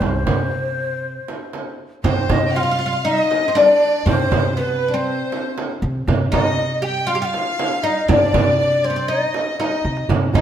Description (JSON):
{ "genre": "Arabic maqam ensemble", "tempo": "119 BPM", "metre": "4/4", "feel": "straight", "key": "C maqam nahawand", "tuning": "A4 = 441 Hz", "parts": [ { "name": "oud", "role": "melody", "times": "0.0-10.4 s", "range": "B3 to G4", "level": "-20 LUFS", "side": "left 2 dB", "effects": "none" }, { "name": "breathy ney", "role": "second line", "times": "0.0-10.4 s", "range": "B4 to Ab5", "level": "-23 LUFS", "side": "left 1 dB", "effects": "none" }, { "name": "upright bass", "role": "bass", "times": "0.0-10.4 s", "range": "C2 to C3", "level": "-23 LUFS", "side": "equal", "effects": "none" }, { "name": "darbuka", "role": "percussion", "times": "0.0-10.4 s", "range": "none", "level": "-25 LUFS", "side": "right 3 dB", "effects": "none" }, { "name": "frame drum", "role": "percussion", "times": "0.0-10.4 s", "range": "none", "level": "-23 LUFS", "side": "right 4 dB", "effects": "none" }, { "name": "rich chamber violin section", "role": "second line", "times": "2.0-10.4 s", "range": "B4 to G5", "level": "-27 LUFS", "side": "right 1 dB", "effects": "none" } ], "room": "wet stone room reverb, RT60 1.3 s", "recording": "band playing live in one room", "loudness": "-16 LUFS", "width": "side -10 dB against mid", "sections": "0.0-2.0 A section; 2.0-10.4 B section", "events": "drum fill 9.6-10.1", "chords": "none", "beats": "| 0.01 0.52 1.03 1.53 | 2.04 2.55 3.05 3.56 | 4.06 4.56 5.07 5.57 | 6.08 6.58 7.08 7.58 | 8.09 8.59 9.09 9.60 | 10.10" }